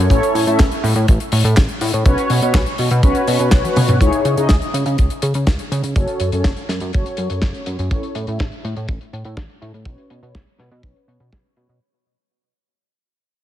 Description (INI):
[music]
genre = italo disco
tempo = 123 BPM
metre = 4/4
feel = straight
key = unclear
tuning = A4 = 441 Hz
[part]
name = mellow synth brass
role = stabs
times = 0.0-11.8 s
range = C#4 to E5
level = -21 LUFS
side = left 1 dB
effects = chorus, cassette tape, ping-pong delay
[part]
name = chorused synth bass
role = bass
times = 0.0-11.8 s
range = F#1 to C#3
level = -19 LUFS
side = equal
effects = none
[part]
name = damped 70s drum kit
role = drums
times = 0.1-11.8 s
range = handclaps, hi-hat, snare drum, toms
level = -22 LUFS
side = left 1 dB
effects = low-pass filter on hats, studio reverb, low-pass filter on toms, low-pass filter on snare, low-pass filter on room
[part]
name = kick drum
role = drums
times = 0.1-11.4 s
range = none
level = -15 LUFS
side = equal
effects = studio reverb
[sound]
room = light reverb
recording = heavily compressed radio sound, multiband compression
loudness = -15 LUFS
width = side -12 dB against mid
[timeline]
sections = 0.0-4.0 A section; 4.0-11.8 B section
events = drum fill 3.6-4.0; fade-out 4.0-11.8; filter sweep on drum 4.0-11.8; filter sweep on analog polysynth 4.0-11.8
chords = 0.1 A; 2.1 Bsus2; 4.0 C#madd9; 6.0 F#m; 7.9 A; 9.9 Bsus2